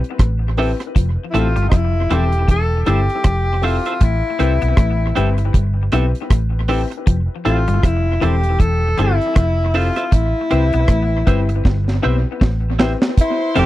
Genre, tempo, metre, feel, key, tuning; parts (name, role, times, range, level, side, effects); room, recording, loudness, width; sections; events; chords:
lovers rock reggae; 79 BPM; 4/4; swing 58% on 16ths; A minor; A4 = 440 Hz
deep reggae drum kit; drums; 0.0-13.7 s; hi-hat, kick drum, rim click, snare drum; -16 LUFS; equal; tape echo
twangy electric guitar; riff; 0.2-13.7 s; E3 to C4; -27 LUFS; left 6 dB; tape echo
vintage muted fingered electric bass; bass; 0.2-13.7 s; E1 to C2; -18 LUFS; equal
clear grand piano; accompaniment; 0.6-13.7 s; C4 to B4; -25 LUFS; left 5 dB; tape echo
twelve-string electric guitar; stabs; 0.6-13.7 s; C4 to E5; -23 LUFS; right 6 dB
warm tenor saxophone; melody; 1.3-13.7 s; D#4 to A4; -21 LUFS; left 2 dB; tape echo
warm studio violin section; second line; 13.2-13.7 s; C5 to C6; -27 LUFS; right 3 dB
little or no reverb; dry, close 1970s-style studio recording; -14 LUFS; side -15 dB against mid
0.0-13.2 A section
drum fill 11.7-13.2
0.0 Am7; 1.0 Fmaj7; 4.0 Am7; 7.1 Fmaj7; 10.1 Am7